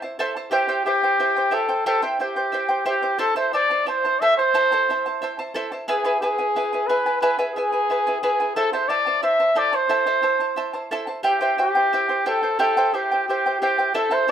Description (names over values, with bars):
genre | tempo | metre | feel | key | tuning
andean folk, Andean ensemble | 89 BPM | 4/4 | straight | unclear | A4 = 442 Hz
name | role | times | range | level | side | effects
charango | accompaniment | 0.0-14.3 s | E4 to A5 | -23 LUFS | right 1 dB | none
mellow trumpet | melody | 0.5-14.3 s | G4 to E5 | -20 LUFS | equal | plate reverb
room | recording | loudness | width
moderate studio reverb, RT60 0.6 s | none | -19 LUFS | side -9 dB against mid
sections
0.5-14.3 A section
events
none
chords
0.0 Am; 0.5 C; 3.2 Am; 5.9 E; 8.6 Am; 11.3 C